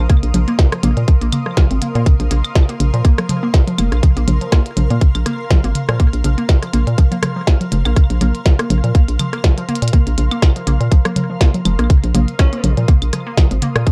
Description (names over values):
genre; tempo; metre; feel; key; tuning
minimal techno; 122 BPM; 4/4; swing 55% on 16ths; unclear; A4 = 440 Hz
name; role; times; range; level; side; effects
hollow knocking FM bass; bass; 0.0-13.9 s; F1 to Bb2; -18 LUFS; equal; sidechain pumping
granular cloud pad; texture; 0.0-13.9 s; Bb4 to F6; -32 LUFS; equal; built-in reverb, sidechain pumping
hollow square pluck; riff; 0.1-13.9 s; F3 to Bb4; -27 LUFS; equal; chorus, cassette tape, sidechain pumping, tape echo
electronic kick drum; drums; 0.1-13.9 s; none; -13 LUFS; equal; none
minimal click drum kit; drums; 0.1-13.9 s; hi-hat, snare drum; -26 LUFS; equal; none
booming analog drum machine; percussion; 0.1-13.9 s; claves, congas, rim click, toms; -24 LUFS; equal; digital delay
warm alto saxophone; melody; 12.4-12.8 s; Db4; -29 LUFS; equal; digital delay
room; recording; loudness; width
light reverb; dark, warm production; -15 LUFS; mono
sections
0.0-13.9 A section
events
drum fill 9.7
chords
0.0 Bbsus4